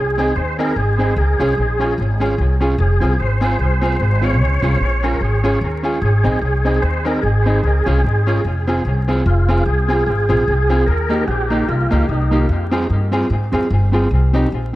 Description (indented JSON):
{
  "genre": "ska",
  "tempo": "148 BPM",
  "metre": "4/4",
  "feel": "swing 57% on 8ths",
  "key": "F minor",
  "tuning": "A4 = 436 Hz",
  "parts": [
    { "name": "tonewheel organ", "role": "melody", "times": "0.0-12.4 s", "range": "Eb4 to Db5", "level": "-22 LUFS", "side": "equal", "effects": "chorus vibrato, fast rotary speaker, tape echo" },
    { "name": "upright bass", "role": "bass", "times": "0.0-14.8 s", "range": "F1 to Ab2", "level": "-17 LUFS", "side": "equal", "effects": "none" },
    { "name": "mellow electric guitar", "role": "accompaniment", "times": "0.2-14.6 s", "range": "Bb3 to Ab4", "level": "-22 LUFS", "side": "right 2 dB", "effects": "none" },
    { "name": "clear upright piano", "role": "stabs", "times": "0.2-14.5 s", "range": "Bb3 to Ab4", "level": "-24 LUFS", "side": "left 2 dB", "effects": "tape echo" }
  ],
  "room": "light reverb, small room ambience",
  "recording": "dark, warm production, vinyl crackle",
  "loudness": "-14 LUFS",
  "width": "side -16 dB against mid",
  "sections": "0.0-9.3 A section; 9.3-14.8 B section",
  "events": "none",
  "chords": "0.0 Ab; 1.2 Db; 2.8 Fm; 4.4 Db; 6.0 Ab; 7.6 Db; 8.5 Fm; 10.9 Eb; 12.5 Fm; 14.1 Cm",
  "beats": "0.36 0.76 | 1.17 1.57 1.98 2.38 | 2.79 3.19 3.60 4.00 | 4.40 4.81 5.21 5.62 | 6.02 6.43 6.83 7.24 | 7.64 8.05 8.45 8.86 | 9.26 9.66 10.07 10.47 | 10.88 11.28 11.69 12.09 | 12.50 12.90 13.31 13.71 | 14.12 14.52"
}